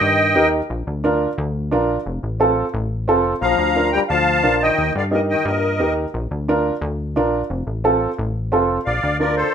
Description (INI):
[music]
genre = latin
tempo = 176 BPM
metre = 4/4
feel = straight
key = Bb major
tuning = A4 = 442 Hz
[part]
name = musette accordion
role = melody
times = 0.0-0.5, 3.4-5.9, 8.8-9.5 s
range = A4 to Bb5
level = -18 LUFS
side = right 1 dB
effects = none
[part]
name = breathy trombone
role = second line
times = 0.0-0.5, 3.4-5.9 s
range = Bb2 to G3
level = -22 LUFS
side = left 9 dB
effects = none
[part]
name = plucky analog bass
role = bass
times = 0.0-9.4 s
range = F1 to G2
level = -24 LUFS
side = left 1 dB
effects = none
[part]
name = dark upright piano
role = accompaniment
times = 0.4-9.4 s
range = C4 to Bb4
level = -19 LUFS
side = right 2 dB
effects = none
[sound]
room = moderate large studio reverb, RT60 0.8 s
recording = minimal, uncompressed stereo recording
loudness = -17 LUFS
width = side -8 dB against mid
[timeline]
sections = 0.0-8.9 A section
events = none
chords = 0.0 Eb; 0.7 Bb; 2.1 F; 3.4 Bb; 4.8 Eb; 6.1 Bb; 7.5 F; 8.9 Bb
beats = 0.01 0.35 | 0.69 1.03 1.37 1.71 | 2.05 2.39 2.73 3.07 | 3.42 3.75 4.10 4.44 | 4.78 5.12 5.46 5.80 | 6.14 6.48 6.82 7.16 | 7.50 7.84 8.18 8.52 | 8.86 9.20 9.54